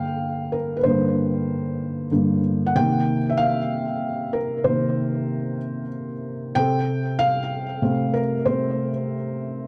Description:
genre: pop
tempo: 63 BPM (dotted quarters)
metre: 6/8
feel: straight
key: unclear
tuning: A4 = 440 Hz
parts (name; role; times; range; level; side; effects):
- felt-muted upright piano; solo; 0.0-9.7 s; G2 to G5; -23 LUFS; equal; digital delay
room: moderate echo chamber reverb, RT60 1.6 s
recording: dark, warm production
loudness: -23 LUFS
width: mono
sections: 0.0-9.7 A section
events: felt piano solo 0.0-9.7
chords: 0.0 Gm; 2.8 Cm7; 6.6 F/C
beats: | 0.85 1.80 | 2.75 3.70 | 4.66 5.61 | 6.56 7.52 | 8.47 9.43

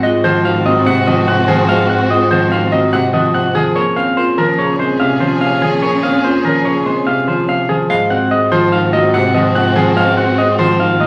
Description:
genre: classical, minimalist pattern music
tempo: 145 BPM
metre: 5/4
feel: straight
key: Ab mixolydian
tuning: A4 = 442 Hz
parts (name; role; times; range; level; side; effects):
- clean electric guitar; melody; 0.0-11.1 s; Ab4 to Gb5; -18 LUFS; equal; none
- clear grand piano; accompaniment; 0.0-11.1 s; C3 to C4; -20 LUFS; equal; none
- rich chamber violin section; sustained chords; 0.0-11.1 s; C4 to Ab4; -21 LUFS; equal; none
- marimba with soft mallets; arpeggios; 0.0-11.1 s; C4 to C5; -22 LUFS; equal; none
- rich cello; bass; 0.0-11.1 s; Ab2 to Bb2; -24 LUFS; equal; none
room: wet large studio reverb, RT60 0.9 s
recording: vinyl crackle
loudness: -14 LUFS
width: mono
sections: 0.0-7.9 A section; 7.9-11.1 B section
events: none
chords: 0.0 Ab7; 3.8 Bbm7; 7.9 Ab7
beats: 0.03 0.45 0.86 1.27 | 1.69 2.10 2.52 2.93 3.34 | 3.76 4.17 4.58 5.00 5.41 | 5.83 6.24 6.65 7.07 7.48 | 7.89 8.31 8.72 9.14 9.55 | 9.96 10.38 10.79

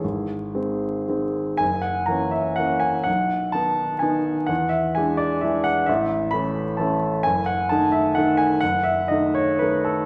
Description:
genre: classical, piano waltz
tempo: 111-140 BPM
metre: 3/4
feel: rubato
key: unclear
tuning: A4 = 436 Hz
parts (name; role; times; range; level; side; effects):
- clear baby grand piano; solo; 0.0-10.1 s; F#1 to B5; -22 LUFS; equal; none
room: wet recital hall reverb, RT60 1.4 s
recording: heard from further back in the room, vinyl crackle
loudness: -22 LUFS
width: mono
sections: 0.0-10.1 A section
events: none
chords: 0.0 G#; 1.6 F#7; 3.1 B; 4.5 E7; 5.9 A; 7.2 D#dim/F#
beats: | 0.03 0.55 1.09 | 1.61 2.09 2.59 | 3.07 3.55 4.03 | 4.50 4.97 5.44 | 5.88 6.32 6.79 | 7.25 7.70 8.16 | 8.62 9.09 9.60

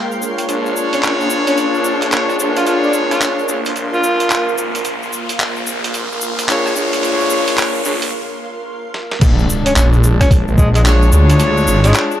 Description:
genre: glitch hop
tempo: 110 BPM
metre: 4/4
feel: swing 63% on 16ths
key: unclear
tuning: A4 = 440 Hz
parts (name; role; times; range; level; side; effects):
- dark studio string section; sustained chords; 0.0-4.8, 9.2-12.2 s; Ab3 to G5; -22 LUFS; left 3 dB; sidechain pumping, low-pass filter
- granular cloud pad; texture; 0.0-8.1 s; Bb4 to C6; -23 LUFS; right 2 dB; built-in reverb, sidechain pumping
- cabasa; percussion; 0.1-12.2 s; none; -26 LUFS; left 2 dB; none
- clear horn section; stabs; 0.2-12.2 s; D4 to C#5; -18 LUFS; left 1 dB; vintage 12-bit sampler grit, sidechain pumping, dub echo
- boom bap sampler-style drum kit; drums; 0.4-12.1 s; crash cymbal, handclaps, hi-hat, rim click, snare drum; -21 LUFS; right 1 dB; high-pass filter on snare, high-pass filter on hats, high-pass filter on cymbals
- phased detuned saw bass; bass; 0.5-11.9 s; Ab1 to D2; -17 LUFS; equal; phaser, tube saturation, high-pass filter
- riser and impact; sound effects; 1.6-11.4 s; none; -25 LUFS; equal; none
- bright tenor saxophone; melody; 0.9-4.5, 9.7-11.9 s; Ab3 to F4; -21 LUFS; equal; dub echo
- electronic kick drum; drums; 9.2-10.7 s; none; -11 LUFS; equal; none
room: moderate plate reverb, RT60 2.1 s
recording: none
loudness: -12 LUFS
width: side -11 dB against mid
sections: 0.0-9.2 A section; 9.2-12.2 B section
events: build-up 0.0-9.2; filter sweep on string section 0.0-9.2; riser 1.6-8.1; break 8.1-9.2; drum fill 8.9; drop 9.2-12.2; impact 9.2-11.4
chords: 0.0 Bb7#9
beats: | 0.49 1.03 1.58 2.12 | 2.67 3.21 3.76 4.30 | 4.85 5.40 5.94 6.49 | 7.03 7.58 8.12 8.67 | 9.21 9.76 10.30 10.85 | 11.40 11.94

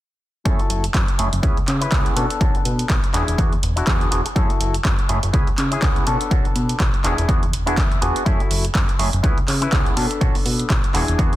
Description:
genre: filtered disco house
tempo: 123 BPM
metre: 4/4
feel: swing 57% on 16ths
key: F# minor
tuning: A4 = 440 Hz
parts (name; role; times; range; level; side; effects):
- overdriven clav; accompaniment; 0.5-11.3 s; A3 to A4; -26 LUFS; right 1 dB; phaser, sidechain pumping, low-pass filter
- electric guitar with an envelope filter; riff; 0.5-11.4 s; B3 to G#5; -28 LUFS; left 4 dB; sidechain pumping, low-pass filter
- plucky analog bass; bass; 0.5-11.4 s; E1 to C#3; -23 LUFS; equal; sidechain pumping, low-pass filter
- electronic kick drum; drums; 0.5-11.3 s; none; -20 LUFS; equal; none
- punchy analog drum machine; drums; 0.5-11.4 s; handclaps, hi-hat; -26 LUFS; right 1 dB; sidechain pumping on hats
room: digital ambience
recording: dense, heavily limited modern master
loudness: -17 LUFS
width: side -15 dB against mid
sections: 0.5-11.4 A section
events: filter sweep 0.5-11.4; clean electric guitar fill 7.5-8.3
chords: 0.5 F#m7; 1.4 C#m7; 2.2 Bm7; 3.1 E7; 4.4 F#m7; 5.3 C#m7; 6.1 Bm7; 7.0 E7; 8.3 F#m7; 9.2 C#m7; 10.0 Bm7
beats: | 0.46 0.95 1.43 1.92 | 2.41 2.90 3.39 3.87 | 4.36 4.85 5.34 5.83 | 6.31 6.80 7.29 7.78 | 8.26 8.75 9.24 9.73 | 10.21 10.70 11.19

